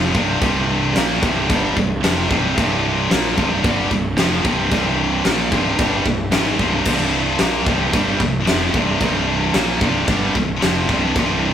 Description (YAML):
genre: heavy metal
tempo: 112 BPM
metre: 4/4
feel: straight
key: unclear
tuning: A4 = 440 Hz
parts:
  - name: heavy high-gain guitar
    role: riff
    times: 0.0-11.5 s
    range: C2 to Bb3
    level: -21 LUFS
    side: left 6 dB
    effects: distortion
  - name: high-gain distorted guitar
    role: riff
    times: 0.0-11.5 s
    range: C2 to Bb3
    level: -21 LUFS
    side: right 5 dB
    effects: distortion
  - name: fuzz fingered electric bass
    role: bass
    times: 0.0-11.5 s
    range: C1 to Bb1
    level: -25 LUFS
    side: equal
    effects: overdrive
  - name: big rock drum kit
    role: drums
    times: 0.1-11.3 s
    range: china cymbal, crash cymbal, kick drum, snare drum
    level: -20 LUFS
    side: left 1 dB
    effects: none
room: light reverb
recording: rough rehearsal-room recording, tube saturation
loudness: -15 LUFS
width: side -9 dB against mid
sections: 0.0-11.5 A section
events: none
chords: 0.0 C5